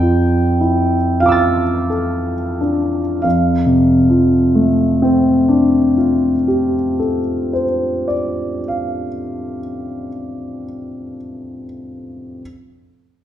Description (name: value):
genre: classical, impressionist solo piano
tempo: 27-35 BPM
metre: 4/4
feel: rubato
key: F major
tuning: A4 = 438 Hz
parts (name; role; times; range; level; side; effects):
- clear concert grand piano; solo; 0.0-12.4 s; F2 to A6; -14 LUFS; equal; none
room: wet recital hall reverb, RT60 1.3 s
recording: none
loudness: -13 LUFS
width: side -11 dB against mid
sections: 0.0-3.2 A section; 3.2-10.2 B section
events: slowing down 0.0-3.2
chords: 0.0 Dmadd9/F; 3.2 F69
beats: 1.22 | 3.24 5.01 6.72 8.44